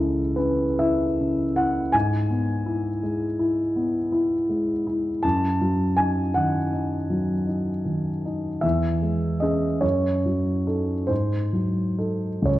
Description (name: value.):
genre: classical, romantic nocturne for solo piano.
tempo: 39-56 BPM (dotted quarters).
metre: 9/8.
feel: rubato.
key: unclear.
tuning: A4 = 440 Hz.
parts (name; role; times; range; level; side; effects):
warm grand piano; solo; 0.0-12.6 s; C#2 to A5; -21 LUFS; equal; none.
room: wet recital hall reverb, RT60 1.7 s.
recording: worn, warbling old tape, cassette tape, warbly pitch drift.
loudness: -21 LUFS.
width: side -15 dB against mid.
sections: 0.0-12.6 A section.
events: none.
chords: 0.0 A/C#; 1.9 E/G#; 5.2 D#dim/F#; 8.6 C#m/E; 9.8 D#dim/F#; 11.1 G#7b9.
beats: 0.81 | 1.94 3.02 4.12 | 5.24 6.36 7.47 | 8.63 9.83 11.10 | 12.47.